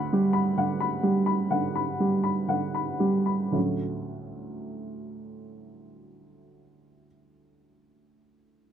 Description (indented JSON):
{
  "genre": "neoclassical minimalist piano",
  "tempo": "56-65 BPM",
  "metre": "4/4",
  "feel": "rubato",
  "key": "D major",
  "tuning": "A4 = 438 Hz",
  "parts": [
    { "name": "dark upright piano", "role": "solo", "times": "0.0-8.7 s", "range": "D2 to B5", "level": "-25 LUFS", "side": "right 1 dB", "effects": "none" }
  ],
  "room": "little or no reverb",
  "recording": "close, detailed microphones",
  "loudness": "-24 LUFS",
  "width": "side -9 dB against mid",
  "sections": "0.0-3.6 A section; 3.6-7.6 B section",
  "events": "slowing down 0.0-3.6",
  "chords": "0.0 Gmaj7/D; 3.6 Dmaj7"
}